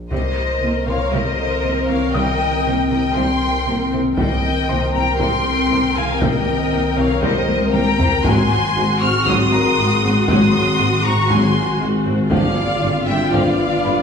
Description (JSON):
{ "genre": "cinematic, hybrid orchestral and electronic film score", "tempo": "118 BPM", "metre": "4/4", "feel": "straight", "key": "unclear", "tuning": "A4 = 441 Hz", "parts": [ { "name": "saturated sub bass", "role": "bass", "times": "0.0-14.0 s", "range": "G1 to C2", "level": "-27 LUFS", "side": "left 1 dB", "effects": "none" }, { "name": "warm symphonic violin section", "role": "melody", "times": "0.1-14.0 s", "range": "Eb5 to F6", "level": "-22 LUFS", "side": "left 1 dB", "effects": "none" }, { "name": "rich studio violin section", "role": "second line", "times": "0.1-14.0 s", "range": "C5 to Db6", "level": "-24 LUFS", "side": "left 2 dB", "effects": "none" }, { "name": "warm symphonic viola section", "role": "accompaniment", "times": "0.1-14.0 s", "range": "F3 to Bb4", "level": "-24 LUFS", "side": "left 1 dB", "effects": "none" }, { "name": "glassy FM pad", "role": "sustained chords", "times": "0.8-14.0 s", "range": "Eb3 to B4", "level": "-23 LUFS", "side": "left 1 dB", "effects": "ensemble chorus, built-in reverb" }, { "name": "mellow tuba", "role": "bass", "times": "0.1-13.9 s", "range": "G1 to C2", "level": "-25 LUFS", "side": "equal", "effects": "none" }, { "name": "rich studio cello section", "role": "bass", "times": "0.1-13.9 s", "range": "G2 to C3", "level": "-26 LUFS", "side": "right 1 dB", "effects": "none" }, { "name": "rich symphonic double bass section", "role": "bass", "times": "0.1-13.9 s", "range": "G1 to C2", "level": "-27 LUFS", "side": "right 1 dB", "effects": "none" }, { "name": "solo taiko drums", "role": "drums", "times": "0.1-1.1, 4.2-13.8 s", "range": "none", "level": "-24 LUFS", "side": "left 1 dB", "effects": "none" }, { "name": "felt-muted upright piano", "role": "texture", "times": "0.9-14.0 s", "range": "G4 to Eb6", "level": "-31 LUFS", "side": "left 4 dB", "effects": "none" } ], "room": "wet recital hall reverb, RT60 1.3 s", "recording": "recorded in a church or concert hall, small room reverb", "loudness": "-15 LUFS", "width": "side -6 dB against mid", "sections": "0.1-14.0 A section", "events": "drum fill 7.5-8.2", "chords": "0.1 Cm7; 8.2 Ab7; 12.3 G7" }